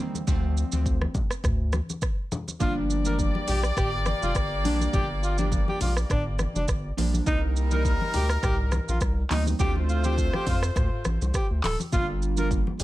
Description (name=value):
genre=afrobeats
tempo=103 BPM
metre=4/4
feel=swing 55% on 16ths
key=G minor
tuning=A4 = 440 Hz
part: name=glassy digital keys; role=accompaniment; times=0.0-12.6 s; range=D3 to F4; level=-31 LUFS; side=right 2 dB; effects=chorus
part: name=congas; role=percussion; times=0.1-12.8 s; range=none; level=-34 LUFS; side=left 3 dB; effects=none
part: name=afro-pop drum kit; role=drums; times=0.2-12.8 s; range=handclaps, hi-hat, kick drum, rim click, shaker, toms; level=-28 LUFS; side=equal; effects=none
part: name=saturated sub bass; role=bass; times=0.3-12.8 s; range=D1 to F2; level=-26 LUFS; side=equal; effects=none
part: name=breathy alto saxophone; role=melody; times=2.6-12.8 s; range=D4 to Bb4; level=-32 LUFS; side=equal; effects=digital delay
part: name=clear horn section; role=second line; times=2.6-11.6 s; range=G3 to D5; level=-32 LUFS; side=left 1 dB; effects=none
room=little or no reverb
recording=none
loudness=-23 LUFS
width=side -16 dB against mid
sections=0.0-2.6 A section; 2.6-12.8 B section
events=none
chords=0.3 Dm7; 2.6 Gm7; 7.3 Cm7; 9.6 Dm7; 11.9 Gm7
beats=| 0.28 0.86 1.44 2.02 | 2.60 3.19 3.77 4.35 | 4.93 5.52 6.10 6.68 | 7.26 7.85 8.43 9.01 | 9.60 10.18 10.76 11.34 | 11.93 12.51